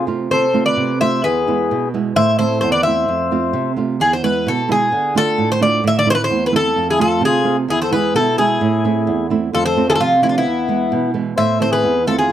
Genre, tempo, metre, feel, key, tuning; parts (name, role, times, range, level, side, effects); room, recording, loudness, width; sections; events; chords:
greek folk, Greek bouzouki band; 130 BPM; 2/4; straight; A4 = 440 Hz
Greek bouzouki; melody; 0.0-12.3 s; E4 to E5; -17 LUFS; left 1 dB
mellow accordion; second line; 0.0-3.7, 6.9-12.3 s; B3 to C5; -22 LUFS; left 7 dB
flamenco guitar; accompaniment; 0.0-12.3 s; E2 to F4; -18 LUFS; right 5 dB
studio ambience; dry, close 1970s-style studio recording; -14 LUFS; side -11 dB against mid
0.0-4.0 A section; 4.0-11.4 B section
0.0 F; 1.2 E; 2.2 Am; 3.1 F; 4.0 E; 4.9 Dm; 5.8 Am; 6.8 F; 7.7 E; 8.6 Am; 9.5 F; 10.4 E; 11.4 Am